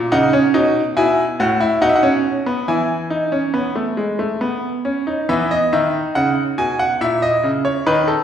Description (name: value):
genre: classical, baroque-style 3-part fugue for grand piano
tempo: 70 BPM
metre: 3/4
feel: straight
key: E major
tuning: A4 = 440 Hz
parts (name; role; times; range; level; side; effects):
- bright grand piano; solo; 0.0-8.2 s; A2 to G#5; -15 LUFS; equal; none
room: wet recital hall reverb, RT60 1.3 s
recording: recorded in a church or concert hall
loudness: -15 LUFS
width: side -9 dB against mid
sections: 0.0-5.3 A section; 5.3-8.2 B section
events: none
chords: 0.1 Badd9; 1.0 E/B; 1.8 B; 2.7 E; 5.3 E5; 7.0 A#dim